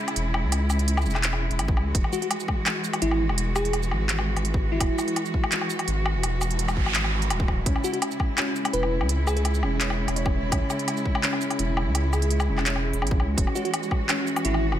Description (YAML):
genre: half-time drum and bass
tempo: 168 BPM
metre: 4/4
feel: half-time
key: C# minor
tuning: A4 = 440 Hz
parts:
  - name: clear studio cello section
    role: sustained chords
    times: 0.0-14.8 s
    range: C#3 to F#4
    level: -30 LUFS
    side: equal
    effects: sidechain pumping
  - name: organic electronic drum kit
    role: drums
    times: 0.1-14.8 s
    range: handclaps, hi-hat, shaker, woodblock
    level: -28 LUFS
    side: left 1 dB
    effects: none
  - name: saturated sub bass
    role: bass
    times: 0.2-14.8 s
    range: D1 to C#2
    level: -25 LUFS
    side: equal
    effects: tube saturation
  - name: electronic kick drum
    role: drums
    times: 1.7-14.0 s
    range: none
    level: -25 LUFS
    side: equal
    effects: none
  - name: bell-like FM electric piano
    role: melody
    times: 2.1-5.2, 7.8-9.4, 13.6-14.7 s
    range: E4 to B4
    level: -30 LUFS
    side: equal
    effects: chorus, ping-pong delay
  - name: noise sweep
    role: sound effects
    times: 6.5-7.7 s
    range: none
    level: -32 LUFS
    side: right 4 dB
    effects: none
  - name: felt-muted upright piano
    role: arpeggios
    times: 7.7-14.8 s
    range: C#4 to C#5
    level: -31 LUFS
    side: equal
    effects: ping-pong delay
room: light reverb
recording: none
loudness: -22 LUFS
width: side -11 dB against mid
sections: 0.0-14.8 A section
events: noise sweep 6.5-7.7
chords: 0.0 C#m; 1.9 Eadd9; 7.7 C#m; 13.4 Eadd9